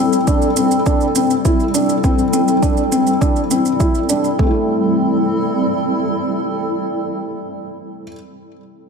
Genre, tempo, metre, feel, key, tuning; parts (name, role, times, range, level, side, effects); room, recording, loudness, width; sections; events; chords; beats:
piano and strings electronica; 102 BPM; 4/4; straight; A minor; A4 = 440 Hz
granular cloud pad; sustained chords; 0.0-7.5 s; G3 to A4; -19 LUFS; equal; built-in reverb, sidechain pumping
felt-muted upright piano; riff; 0.0-8.1 s; A3 to A4; -18 LUFS; left 2 dB; ping-pong delay
shaker; drums; 0.1-4.4 s; -25 LUFS; right 8 dB; overdrive
electronic kick drum; drums; 0.3-4.5 s; -17 LUFS; right 1 dB; overdrive
moderate concert hall reverb, RT60 1.9 s, digital ambience; -14 LUFS; side -5 dB against mid
0.0-4.4 A section; 4.4-6.7 B section
0.0 Am7
0.27 0.86 1.45 | 2.04 2.63 3.21 3.80 | 4.39 4.98 5.57 6.16